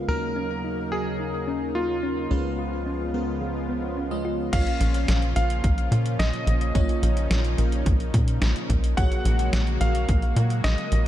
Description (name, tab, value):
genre	synthwave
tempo	108 BPM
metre	4/4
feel	straight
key	Bb phrygian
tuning	A4 = 441 Hz
part	lush unison pad	sustained chords	0.0-11.1 s	Bb2 to Bb4	-32 LUFS	equal	chorus, sidechain pumping
part	FM electric piano with soft pad layer	stabs	0.0-11.1 s	Gb3 to Eb5	-32 LUFS	right 1 dB	chorus, phaser, ping-pong delay
part	tight sequencer bass	bass	0.0-11.1 s	Bb1 to Bb2	-24 LUFS	equal	none
part	warm electric grand piano	melody	0.1-11.1 s	F4 to Gb5	-31 LUFS	equal	ping-pong delay
part	thumb-piano-like synth pluck	arpeggios	0.1-4.5 s	Ab3 to Gb4	-33 LUFS	left 2 dB	chorus, cassette tape, ping-pong delay
part	detuned 8-bit digital drum machine	drums	4.5-11.0 s	crash cymbal, hi-hat, snare drum	-32 LUFS	equal	none
part	electronic kick drum	drums	4.5-10.2 s	none	-24 LUFS	equal	overdrive
room	light reverb, digital ambience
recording	dark, warm production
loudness	-22 LUFS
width	side -12 dB against mid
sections	0.0-4.5 A section; 4.5-11.1 B section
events	filter sweep on synth arpeggio sound 0.0-4.5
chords	0.1 Ebm7; 2.3 Db7; 4.5 Bbm; 9.0 Gbadd9/Bb